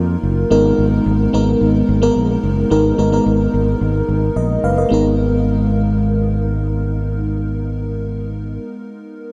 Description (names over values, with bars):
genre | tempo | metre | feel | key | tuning
1980s-style pop | 109 BPM | 4/4 | straight | unclear | A4 = 440 Hz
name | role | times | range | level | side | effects
FM electric piano with soft pad layer | accompaniment | 0.0-9.3 s | F#3 to E#5 | -19 LUFS | equal | chorus, phaser
fretless electric bass | bass | 0.0-8.6 s | F#1 to E#2 | -20 LUFS | equal | none
room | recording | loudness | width
wet huge ambient reverb, RT60 8.4 s | dreamy mix soaked in reverb | -17 LUFS | mono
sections
0.0-4.9 A section; 4.9-7.1 B section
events
none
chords
0.0 D#m; 0.5 G#madd9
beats
| 0.51 1.06 1.61 2.16 | 2.71 3.26 3.81 4.36 | 4.91 5.46 6.01 6.56